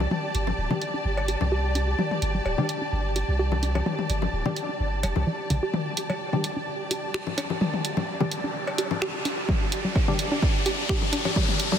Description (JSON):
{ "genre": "minimal techno", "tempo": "128 BPM", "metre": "4/4", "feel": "swing 54% on 16ths", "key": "unclear", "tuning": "A4 = 440 Hz", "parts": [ { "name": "punchy sub bass", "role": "bass", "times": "0.0-11.8 s", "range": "D1 to C2", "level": "-26 LUFS", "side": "right 1 dB", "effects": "sidechain pumping, high-pass filter" }, { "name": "electronic congas, toms and cowbell", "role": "percussion", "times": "0.0-11.8 s", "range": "none", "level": "-31 LUFS", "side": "left 6 dB", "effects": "diffuse ambient delay" }, { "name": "dark symphonic string section", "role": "texture", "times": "0.0-11.8 s", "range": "G4 to A5", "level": "-31 LUFS", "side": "equal", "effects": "sidechain pumping" }, { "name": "hollow square pluck", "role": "riff", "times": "0.1-11.8 s", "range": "D3 to G4", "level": "-30 LUFS", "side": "right 1 dB", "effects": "chorus, sidechain pumping, ping-pong delay" }, { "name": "punchy analog drum machine", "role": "drums", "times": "0.3-11.7 s", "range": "finger snaps, hi-hat", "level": "-33 LUFS", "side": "right 3 dB", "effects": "low-pass filter on hats, low-pass filter on snare" }, { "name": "wavetable chord stab", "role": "stabs", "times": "0.7-10.1 s", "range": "G3 to G4", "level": "-37 LUFS", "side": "equal", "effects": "none" }, { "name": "riser", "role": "sound effects", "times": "7.4-11.8 s", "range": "none", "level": "-31 LUFS", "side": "left 2 dB", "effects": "none" }, { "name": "electronic kick drum", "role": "drums", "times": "9.5-11.5 s", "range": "none", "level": "-25 LUFS", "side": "right 1 dB", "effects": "none" } ], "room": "moderate huge ambient reverb, RT60 7.8 s", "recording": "dreamy mix soaked in reverb", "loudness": "-24 LUFS", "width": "side -9 dB against mid", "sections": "0.0-5.7 A section; 5.7-11.8 B section", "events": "build-up 5.7-11.8; filter sweep on synth arpeggio sound 5.7-11.8; riser 7.4-11.8", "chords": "0.0 G5" }